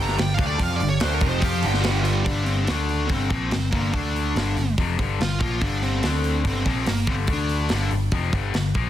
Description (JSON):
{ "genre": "hard rock", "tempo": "144 BPM", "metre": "4/4", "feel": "straight", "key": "G minor", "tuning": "A4 = 441 Hz", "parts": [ { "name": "dark smooth lead guitar", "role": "melody", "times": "0.0-7.9 s", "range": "Bb3 to Bb5", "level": "-28 LUFS", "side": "right 2 dB", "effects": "overdrive" }, { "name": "percussive tonewheel organ", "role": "sustained chords", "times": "0.0-2.2 s", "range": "G4 to G5", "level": "-38 LUFS", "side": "right 2 dB", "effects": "none" }, { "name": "crunchy overdriven guitar", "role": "riff", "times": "0.0-8.9 s", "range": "F2 to F4", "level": "-26 LUFS", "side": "left 7 dB", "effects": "none" }, { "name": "overdriven electric guitar", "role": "riff", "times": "0.0-2.3 s", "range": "F2 to F4", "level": "-28 LUFS", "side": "right 10 dB", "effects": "phaser" }, { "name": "picked electric bass", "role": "bass", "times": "0.0-8.9 s", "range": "F1 to F2", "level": "-25 LUFS", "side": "equal", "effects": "none" }, { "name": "tight metal drum kit", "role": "drums", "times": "0.1-8.8 s", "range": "hi-hat, kick drum, snare drum", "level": "-26 LUFS", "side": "equal", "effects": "soft clipping on kick" } ], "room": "small room ambience", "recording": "dense, heavily limited modern master", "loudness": "-20 LUFS", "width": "side -12 dB against mid", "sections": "0.0-2.3 A section; 2.3-8.9 B section", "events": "lead electric guitar solo 0.0-2.3", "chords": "0.0 G5; 2.7 D5; 3.1 Gm; 3.9 D5; 4.4 Gm; 6.0 D5; 6.5 Gm; 7.3 D5; 7.7 Gm", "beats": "0.18 | 0.60 1.02 1.43 1.85 | 2.27 2.68 3.10 3.52 | 3.94 4.36 4.78 5.20 | 5.61 6.03 6.45 6.87 | 7.29 7.71 8.12 8.54" }